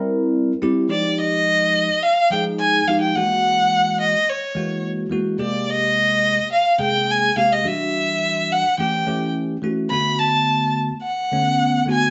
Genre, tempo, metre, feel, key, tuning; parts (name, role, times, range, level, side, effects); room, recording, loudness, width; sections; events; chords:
jazz; 107 BPM; 4/4; straight; A4 = 440 Hz
bell-like tine electric piano; accompaniment; 0.0-12.1 s; C3 to Bb4; -24 LUFS; equal; phaser
warm violin; melody; 0.9-12.1 s; Db5 to B5; -20 LUFS; equal
wet studio reverb, RT60 0.8 s; band playing live in one room, nothing above 7.9 kHz; -19 LUFS; mono
0.9-12.1 A section
0.0 C7; 0.9 Fm9; 3.2 Gb9; 5.4 Abmaj9; 7.7 Em9; 8.8 A7; 9.9 D6